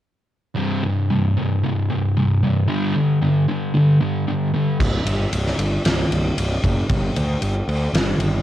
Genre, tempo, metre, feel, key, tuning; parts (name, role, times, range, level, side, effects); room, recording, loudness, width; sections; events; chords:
quiet-loud alternative rock; 114 BPM; 4/4; straight; A4 = 439 Hz
fuzz guitar; riff; 0.6-4.8 s; C2 to G3; -17 LUFS; equal; distortion, cassette tape
fuzz picked electric bass; bass; 4.8-8.4 s; C1 to D2; -21 LUFS; equal; overdrive
huge arena drum kit; drums; 4.8-8.3 s; crash cymbal, kick drum, ride cymbal, snare drum; -22 LUFS; equal; cassette tape
light reverb, studio ambience; home recording on cassette; -18 LUFS; side -12 dB against mid
0.6-4.8 A section; 4.8-8.4 B section
0.6 C5; 2.7 G5; 4.8 C5; 6.9 G5